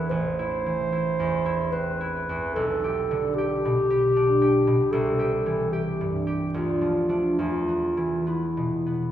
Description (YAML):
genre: classical, romantic duo for clarinet and harp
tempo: 74 BPM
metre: 3/4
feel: uneven beats, rubato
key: A minor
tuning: A4 = 439 Hz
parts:
  - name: mellow clarinet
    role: melody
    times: 0.0-9.1 s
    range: E4 to C5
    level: -24 LUFS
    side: equal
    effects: none
  - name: concert harp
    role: accompaniment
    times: 0.0-9.1 s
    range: A1 to G4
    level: -26 LUFS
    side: right 1 dB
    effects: none
room: wet recital hall reverb, RT60 1.4 s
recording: recorded in a church or concert hall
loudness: -22 LUFS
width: side -11 dB against mid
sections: 0.0-9.1 A section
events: none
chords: 0.1 Am; 2.6 G/B; 4.9 C; 6.5 Dm; 7.4 E5